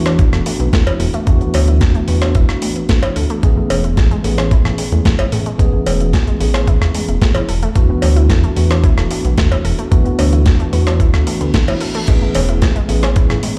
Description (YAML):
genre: nu-disco, nu disco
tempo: 111 BPM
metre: 4/4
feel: straight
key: A major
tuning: A4 = 441 Hz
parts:
  - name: tine electric piano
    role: accompaniment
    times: 0.0-13.6 s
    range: E3 to G#4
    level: -23 LUFS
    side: equal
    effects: sidechain pumping, tape echo
  - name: chorused synth bass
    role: bass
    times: 0.0-13.4 s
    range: E1 to A2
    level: -18 LUFS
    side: equal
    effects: tube saturation
  - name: unison pluck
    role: arpeggios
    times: 0.1-13.5 s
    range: G#3 to A4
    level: -28 LUFS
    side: equal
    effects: vintage 12-bit sampler grit, sidechain pumping, tape echo
  - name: dusty soul sampler-style drum kit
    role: drums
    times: 0.1-13.5 s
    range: crash cymbal, hi-hat, rim click, snare drum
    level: -25 LUFS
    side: equal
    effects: overdrive, small room ambience
  - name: cowbell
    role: percussion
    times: 0.1-13.1 s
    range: none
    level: -25 LUFS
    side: equal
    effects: none
  - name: electronic kick drum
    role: drums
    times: 0.2-13.3 s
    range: none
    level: -16 LUFS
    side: equal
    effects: overdrive, small room ambience
  - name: reverse cymbal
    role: sound effects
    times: 11.3-12.1 s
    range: none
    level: -33 LUFS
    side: equal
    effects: none
room: little or no reverb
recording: played on a big sound system in a bare room, large studio reverb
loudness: -14 LUFS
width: mono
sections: 0.0-13.6 A section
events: reverse cymbal 11.3-12.1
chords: 0.0 E7sus4; 3.4 Amaj7; 7.5 E7sus4; 12.1 Amaj7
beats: 0.19 0.73 | 1.27 1.81 2.35 2.89 | 3.43 3.97 4.51 5.05 | 5.59 6.13 6.67 7.22 | 7.76 8.30 8.84 9.38 | 9.92 10.46 11.00 11.54 | 12.08 12.62 13.16